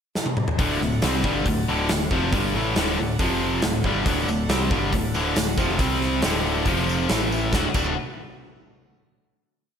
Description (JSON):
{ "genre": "classic rock", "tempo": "138 BPM", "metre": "4/4", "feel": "straight", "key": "D mixolydian", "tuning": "A4 = 440 Hz", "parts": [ { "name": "big rock drum kit", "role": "drums", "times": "0.2-7.9 s", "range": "crash cymbal, hi-hat, kick drum, snare drum, toms", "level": "-25 LUFS", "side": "equal", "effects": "none" }, { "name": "bright tonewheel organ", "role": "sustained chords", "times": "0.6-7.8 s", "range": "D4 to G5", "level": "-36 LUFS", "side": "equal", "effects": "none" }, { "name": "biting overdriven guitar", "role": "riff", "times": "0.6-7.9 s", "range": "D2 to C4", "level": "-26 LUFS", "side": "right 8 dB", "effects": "slapback echo" }, { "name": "tight distorted guitar", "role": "riff", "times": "0.6-7.9 s", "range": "D2 to F#4", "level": "-25 LUFS", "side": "left 8 dB", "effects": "distortion, slapback echo" }, { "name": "overdriven picked electric bass", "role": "bass", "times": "0.6-8.0 s", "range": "D1 to C2", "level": "-29 LUFS", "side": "equal", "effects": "none" }, { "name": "tambourine", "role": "percussion", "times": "4.1-8.0 s", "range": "none", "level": "-40 LUFS", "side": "right 6 dB", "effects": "none" } ], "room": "moderate lush hall reverb, RT60 1.8 s, small room ambience", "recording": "big arena sound", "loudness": "-20 LUFS", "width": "side -8 dB against mid", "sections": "0.0-0.6 pickup bar; 0.6-7.5 riff; 7.5-9.3 final chord", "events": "drum fill 0.2-0.6", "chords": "0.0 N.C.; 0.6 D; 3.2 F5; 3.6 D; 5.8 C5; 6.2 D; 6.7 F5; 7.1 A5; 7.5 D", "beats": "0.16 | 0.59 1.03 1.46 1.90 | 2.33 2.77 3.20 3.64 | 4.07 4.50 4.94 5.37 | 5.81 6.24 6.67 7.11 | 7.54" }